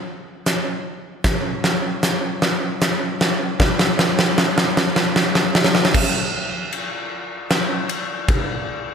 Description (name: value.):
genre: rock.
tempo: 77 BPM.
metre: 3/4.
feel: straight.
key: none.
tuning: none.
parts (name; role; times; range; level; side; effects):
huge arena drum kit; drums; 0.5-8.5 s; crash cymbal, hi-hat, kick drum, ride cymbal, snare drum; -17 LUFS; equal; none.
room: wet concert hall reverb, RT60 2.1 s.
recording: none.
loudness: -17 LUFS.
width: side -6 dB against mid.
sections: 0.0-5.9 A section; 5.9-8.9 B section.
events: build-up 0.0-5.9; drum fill 0.0-5.9.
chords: none.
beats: 0.46 | 1.25 2.03 2.81 | 3.60 4.38 5.16 | 5.94 6.72 7.50 | 8.29.